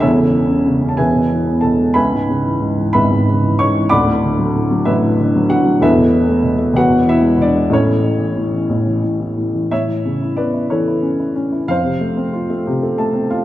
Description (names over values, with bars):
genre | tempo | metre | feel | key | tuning
classical, lyrical solo piano | 62 BPM (dotted quarters) | 6/8 | rubato | A major | A4 = 440 Hz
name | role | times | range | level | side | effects
warm upright piano | solo | 0.0-13.4 s | D1 to D6 | -13 LUFS | equal | none
room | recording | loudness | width
wet recital hall reverb, RT60 1.7 s | recorded in a church or concert hall | -13 LUFS | side -14 dB against mid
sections
0.0-9.7 A section; 9.7-13.4 B section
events
upright piano fill 12.7-13.4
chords
0.0 A/E; 1.0 E; 2.0 C#m7; 3.9 D6; 5.8 Esus4; 6.8 Eadd9; 7.7 A; 9.7 Aadd9; 11.7 F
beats
| 0.02 0.98 | 1.95 2.93 | 3.91 4.87 | 5.82 6.76 | 7.71 8.71 | 9.71 10.70 | 11.69 12.67